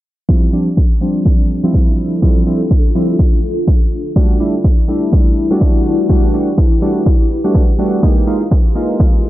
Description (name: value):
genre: deep house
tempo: 124 BPM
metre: 4/4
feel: swing 58% on 16ths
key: D dorian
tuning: A4 = 439 Hz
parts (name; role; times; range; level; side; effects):
- warm analog keys; stabs; 0.3-9.3 s; F3 to G4; -16 LUFS; equal; chorus, low-pass filter, dub echo
- electronic kick drum; drums; 0.3-9.1 s; none; -12 LUFS; equal; overdrive
- granular cloud pad; texture; 1.6-9.3 s; C4 to B4; -21 LUFS; left 1 dB; built-in reverb, sidechain pumping
- electronic hi-hat; drums; 0.5-9.3 s; none; -56 LUFS; left 2 dB; none
room: digital ambience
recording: low-pass filter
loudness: -11 LUFS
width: side -15 dB against mid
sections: 0.3-9.3 A section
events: filter sweep on synth keys 0.3-9.3; filter sweep 0.3-9.3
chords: 0.3 Dm11; 4.2 Em11; 8.0 Fm11